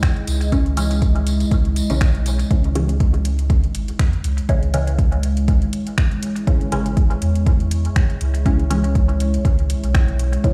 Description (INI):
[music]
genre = dub techno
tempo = 121 BPM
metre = 4/4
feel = swing 55% on 16ths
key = C# minor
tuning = A4 = 438 Hz
[part]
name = deep dark ambient pad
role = sustained chords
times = 0.0-10.5 s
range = G#3 to D#5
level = -29 LUFS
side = equal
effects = chorus, built-in reverb, sidechain pumping
[part]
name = deep house drum kit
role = drums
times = 0.0-10.5 s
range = finger snaps, hi-hat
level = -33 LUFS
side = equal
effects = overdrive, dub echo
[part]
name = electronic kick drum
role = drums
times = 0.0-10.5 s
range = none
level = -20 LUFS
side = equal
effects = overdrive
[part]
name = tambourine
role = percussion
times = 0.0-2.5 s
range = none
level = -36 LUFS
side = equal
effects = none
[part]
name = pure sine sub bass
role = bass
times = 0.3-10.5 s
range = G#1 to E2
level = -22 LUFS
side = equal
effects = sidechain pumping
[part]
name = filtered dub chord stab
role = stabs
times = 0.5-10.5 s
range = C#3 to C#4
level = -28 LUFS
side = equal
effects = phaser, sidechain pumping, dub echo
[sound]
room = digital ambience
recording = played on a big sound system in a bare room, stone room reverb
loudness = -19 LUFS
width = mono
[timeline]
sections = 0.0-2.5 A section; 2.5-10.5 A section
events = none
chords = 0.0 C#m